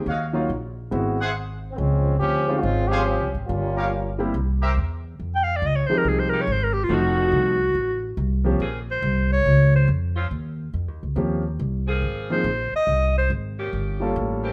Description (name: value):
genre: jazz, big band swing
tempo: 140 BPM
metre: 4/4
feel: swing 65% on 8ths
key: F minor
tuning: A4 = 441 Hz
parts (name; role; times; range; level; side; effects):
- warm concert grand piano; accompaniment; 0.0-14.5 s; F3 to A4; -28 LUFS; equal; none
- upright bass; bass; 0.0-14.5 s; F1 to F2; -26 LUFS; equal; none
- dark trumpet section; stabs; 0.1-4.7 s; Gb4 to Gb5; -31 LUFS; equal; none
- bright trombone section; second line; 1.7-4.1 s; F3 to G4; -27 LUFS; equal; none
- clear clarinet; melody; 5.4-13.3 s; F4 to G5; -24 LUFS; equal; none
- clear saxophone section; sustained chords; 6.3-14.5 s; Db3 to Ab4; -33 LUFS; equal; none
room: moderate large studio reverb, RT60 1.1 s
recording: none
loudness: -23 LUFS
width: mono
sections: 0.0-5.2 A section; 5.2-14.5 B section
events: trombone section solo 0.0-5.2; clarinet solo 5.2-14.5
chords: 0.1 Ebm9; 0.9 Ab7alt; 1.8 Dbmaj7; 3.5 Gm7b5; 4.3 C; 5.2 Fm9; 6.9 F7b9; 8.6 Bbmadd9; 10.3 Eb13; 12.0 Ab69; 13.7 Gm7b5